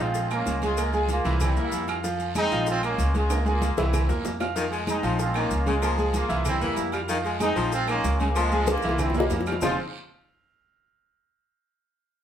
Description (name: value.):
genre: latin, salsa.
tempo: 190 BPM.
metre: 4/4.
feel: straight.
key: F minor.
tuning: A4 = 441 Hz.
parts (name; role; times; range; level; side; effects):
warm trumpet section; melody; 0.0-9.8 s; G3 to F4; -28 LUFS; equal; none.
bright concert grand piano; accompaniment; 0.0-9.8 s; E3 to F6; -29 LUFS; right 2 dB; none.
upright bass; bass; 0.0-9.8 s; F1 to F2; -28 LUFS; equal; none.
congas; percussion; 0.1-9.7 s; none; -36 LUFS; left 2 dB; none.
cowbell and bongos; percussion; 0.1-9.7 s; none; -32 LUFS; left 3 dB; none.
guiro; percussion; 0.1-9.7 s; none; -43 LUFS; right 4 dB; none.
maracas; percussion; 0.1-9.7 s; none; -41 LUFS; left 6 dB; none.
agogo bells and timbales; percussion; 0.2-9.7 s; none; -35 LUFS; right 8 dB; none.
claves; percussion; 0.3-9.7 s; none; -41 LUFS; right 2 dB; none.
breathy baritone saxophone; second line; 4.6-9.7 s; Db3 to Ab3; -31 LUFS; left 5 dB; none.
room: moderate studio reverb, RT60 0.7 s.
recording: band playing live in one room.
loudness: -22 LUFS.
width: side -9 dB against mid.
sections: 0.0-9.6 A section; 9.6-10.9 B section.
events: drum fill 3.3-4.6, 8.7-9.6.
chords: 0.1 Bbm7; 0.8 Db6; 1.4 C7; 2.0 Fm7; 2.7 Bbm7; 3.3 Db6; 3.9 C7; 4.6 Fm7; 5.2 Bbm7; 5.8 Db6; 6.5 C7; 7.1 Fm7; 7.7 Bbm7; 8.4 Db6; 9.0 C7; 9.6 Fm7.